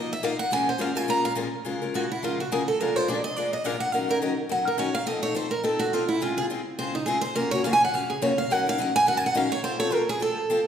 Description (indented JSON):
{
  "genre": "jazz",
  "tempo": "210 BPM",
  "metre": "4/4",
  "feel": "swing 57% on 8ths",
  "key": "Bb minor",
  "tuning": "A4 = 440 Hz",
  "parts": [
    { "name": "picked steel-string acoustic guitar", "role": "melody", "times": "0.0-10.7 s", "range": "Eb4 to Bb5", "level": "-24 LUFS", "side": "right 2 dB", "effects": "none" },
    { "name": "picked steel-string acoustic guitar", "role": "accompaniment", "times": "0.0-10.6 s", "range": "Gb2 to Bb4", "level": "-28 LUFS", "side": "left 3 dB", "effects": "none" }
  ],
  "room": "wet recital hall reverb, RT60 1.4 s",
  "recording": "recorded in a church or concert hall",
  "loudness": "-23 LUFS",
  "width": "side -8 dB against mid",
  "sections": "0.0-1.6 A section; 1.6-10.7 A section",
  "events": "steel-string acoustic guitar solo 0.0-1.6, 1.6-10.7",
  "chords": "0.0 F7sus4; 0.5 Bbm7; 1.6 Db6; 2.8 Bb7; 3.9 Ebm7; 5.1 F7; 6.2 Dbmaj7; 7.3 Gbmaj7; 8.5 Ebm7; 9.6 F",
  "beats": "0.22 | 0.51 0.79 1.08 1.36 | 1.65 1.93 2.22 2.50 | 2.79 3.07 3.36 3.64 | 3.93 4.21 4.50 4.78 | 5.07 5.35 5.64 5.92 | 6.21 6.49 6.78 7.06 | 7.35 7.63 7.92 8.20 | 8.49 8.77 9.06 9.34 | 9.62 9.91 10.19 10.48"
}